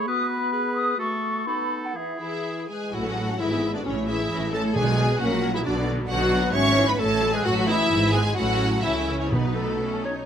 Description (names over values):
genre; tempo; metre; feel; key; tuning
quick classical-period movement for symphony orchestra; 120-136 BPM; 2/4; rubato; A major, E major from 6.5 s; A4 = 440 Hz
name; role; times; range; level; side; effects
clear oboe; second line; 0.0-2.7 s; G#4 to B4; -32 LUFS; right 2 dB; none
mellow hollow small flute group; second line; 0.0-9.8 s; D#4 to D#6; -30 LUFS; left 1 dB; none
warm clarinet; second line; 0.0-10.2 s; B3 to C#5; -30 LUFS; left 1 dB; none
mellow French horn section; sustained chords; 0.0-10.3 s; B2 to C#4; -29 LUFS; left 2 dB; none
rich studio violin section; melody; 2.2-9.8 s; B4 to C#6; -28 LUFS; equal; none
rich studio violin section; second line; 2.2-10.3 s; B3 to C#5; -31 LUFS; left 1 dB; none
warm studio viola section; accompaniment; 2.9-10.3 s; D3 to A4; -31 LUFS; right 1 dB; none
rich studio cello section; bass; 2.9-10.1 s; G#2 to C#3; -29 LUFS; right 1 dB; none
rich studio double bass section; bass; 2.9-10.1 s; G#1 to C#2; -30 LUFS; right 3 dB; none
timpani; percussion; 4.8-5.2, 9.3-10.0 s; B2; -29 LUFS; right 2 dB; none
room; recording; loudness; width
moderate scoring stage reverb, RT60 1.8 s; close, detailed microphones; -21 LUFS; side -8 dB against mid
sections
0.0-2.9 A section; 2.9-10.3 B section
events
none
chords
0.1 B; 1.0 F#m/A; 1.5 B7; 1.9 E; 2.9 A; 3.4 E/G#; 3.9 A; 4.8 Bm; 5.2 F#/A#; 5.7 Bm; 6.5 E/G#; 7.0 F#m7/A; 7.4 B7/A; 7.9 E/G#; 8.4 A; 9.3 B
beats
| 0.07 0.53 | 0.99 1.46 | 1.95 2.44 | 2.93 3.39 | 3.85 4.30 | 4.75 5.21 | 5.65 6.09 | 6.54 6.99 | 7.45 7.90 | 8.36 8.83 | 9.32 9.81